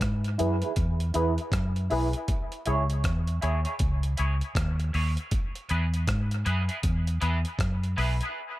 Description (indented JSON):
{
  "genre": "dub reggae",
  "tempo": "79 BPM",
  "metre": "4/4",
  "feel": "swing 62% on 16ths",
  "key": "E major",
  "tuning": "A4 = 440 Hz",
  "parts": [
    { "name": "vintage muted fingered electric bass", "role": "bass", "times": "0.0-8.2 s", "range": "B1 to G#2", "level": "-26 LUFS", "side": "equal", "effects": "none" },
    { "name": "breakbeat sampler-style drum kit", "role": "drums", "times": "0.0-8.3 s", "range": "hi-hat, kick drum, rim click", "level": "-31 LUFS", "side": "equal", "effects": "none" },
    { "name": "electric guitar at the edge of break-up", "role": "accompaniment", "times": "0.4-8.1 s", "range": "B3 to C#5", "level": "-34 LUFS", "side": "right 3 dB", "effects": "lush chorus, high-pass filter, low-pass filter, dub echo" },
    { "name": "filtered dub chord stab", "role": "stabs", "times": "0.4-8.2 s", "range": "E4 to C#5", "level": "-35 LUFS", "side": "left 3 dB", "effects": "chorus, high-pass filter, low-pass filter, dub echo" }
  ],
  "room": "digital ambience",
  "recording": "echo-heavy mix",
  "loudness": "-25 LUFS",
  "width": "side -16 dB against mid",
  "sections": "0.0-8.6 A section",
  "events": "filter sweep 0.0-8.6; break 8.4",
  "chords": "0.0 E; 2.3 C#m; 5.3 E",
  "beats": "0.01 0.77 1.53 | 2.29 3.04 3.80 4.56 | 5.32 6.08 6.83 7.59"
}